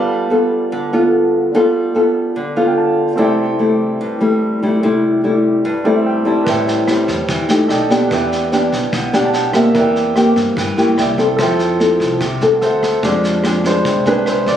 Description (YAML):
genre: bossa nova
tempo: 146 BPM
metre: 4/4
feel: straight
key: C major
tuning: A4 = 438 Hz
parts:
  - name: clear grand piano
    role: accompaniment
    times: 0.0-14.6 s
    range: G3 to A5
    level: -20 LUFS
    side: right 3 dB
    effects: none
  - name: nylon-string guitar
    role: accompaniment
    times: 0.0-14.6 s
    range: G2 to A4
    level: -14 LUFS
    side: left 1 dB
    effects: none
  - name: upright bass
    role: bass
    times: 6.5-14.6 s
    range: A1 to G2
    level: -25 LUFS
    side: left 1 dB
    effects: none
  - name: vintage brush drum kit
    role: drums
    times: 6.5-14.5 s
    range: kick drum, rim click, snare drum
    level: -24 LUFS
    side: equal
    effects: none
room: light reverb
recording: recorded on a phone in the room, studio reverb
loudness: -13 LUFS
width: side -10 dB against mid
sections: 0.0-13.0 A section; 13.0-14.6 B section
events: grand piano fill 2.4-3.2, 5.6-6.5, 8.9-9.8; grand piano solo 13.0-14.6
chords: 0.0 G9; 3.2 C6; 6.5 Am7; 7.7 B7alt; 8.1 Em7; 9.8 C7/E; 11.0 C7; 11.4 Fmaj7; 12.6 D7; 13.0 Fm6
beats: 0.31 0.72 1.13 | 1.54 1.95 2.36 2.77 | 3.19 3.60 4.01 4.42 | 4.83 5.24 5.65 6.06 | 6.47 6.88 7.29 7.70 | 8.11 8.52 8.93 9.34 | 9.75 10.16 10.57 10.98 | 11.39 11.80 12.21 12.62 | 13.03 13.44 13.85 14.26